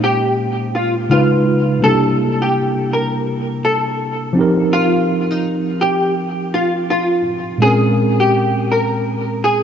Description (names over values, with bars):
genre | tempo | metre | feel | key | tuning
hip hop | 83 BPM | 4/4 | swing 59% on 16ths | Bb dorian | A4 = 440 Hz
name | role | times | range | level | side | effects
archtop guitar, miked and amplified | melody | 0.0-9.6 s | Eb4 to Bb4 | -17 LUFS | left 1 dB | ensemble chorus, low-pass filter, diffuse ambient delay
mellow tine electric piano | accompaniment | 0.0-9.6 s | Bb2 to C5 | -17 LUFS | right 1 dB | medium stereo tremolo, low-pass filter
room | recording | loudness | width
wet plate reverb, RT60 2.6 s | dreamy mix soaked in reverb, cassette tape, nothing above 7.6 kHz | -14 LUFS | side -8 dB against mid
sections
0.0-9.6 A section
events
none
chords
0.0 Bbm9; 1.1 Db9; 1.8 C9; 4.4 F9sus4; 7.6 Bbm9